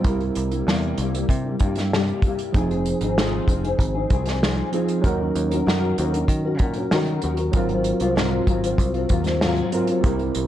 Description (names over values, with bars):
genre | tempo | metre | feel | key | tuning
indie pop, bedroom pop | 96 BPM | 4/4 | straight | unclear | A4 = 440 Hz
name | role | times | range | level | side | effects
nylon-string guitar | accompaniment | 0.0-10.5 s | Ab2 to Bb4 | -25 LUFS | left 4 dB | ensemble chorus, warbly pitch drift
tine electric piano | accompaniment | 0.0-10.5 s | F3 to Bb4 | -27 LUFS | right 6 dB | none
picked electric bass | bass | 0.0-10.5 s | F1 to Eb3 | -26 LUFS | equal | none
unplugged drum kit | drums | 0.0-10.5 s | hi-hat, kick drum, snare drum | -23 LUFS | equal | none
room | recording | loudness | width
light reverb, small room ambience | dark, warm production | -19 LUFS | side -12 dB against mid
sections
0.0-10.5 A section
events
none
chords
0.0 C7; 2.5 Fm7; 5.0 Ebm7; 7.5 Ab13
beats
| 0.05 0.67 1.30 1.92 | 2.55 3.17 3.80 4.42 | 5.05 5.67 6.30 6.92 | 7.55 8.17 8.80 9.42 | 10.05